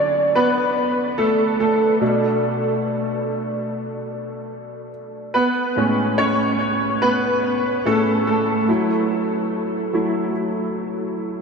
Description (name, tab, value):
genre	pop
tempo	72 BPM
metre	4/4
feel	straight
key	A major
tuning	A4 = 442 Hz
part	bright concert grand piano	solo	0.0-11.4 s	A2 to D5	-18 LUFS	equal	ensemble chorus, analog delay
room	wet huge ambient reverb, RT60 7.3 s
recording	dreamy mix soaked in reverb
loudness	-18 LUFS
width	side -5 dB against mid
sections	0.0-11.4 A section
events	grand piano solo 0.0-11.4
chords	0.0 Dmaj7; 2.0 Bm7; 5.3 Amaj7; 8.7 F#m7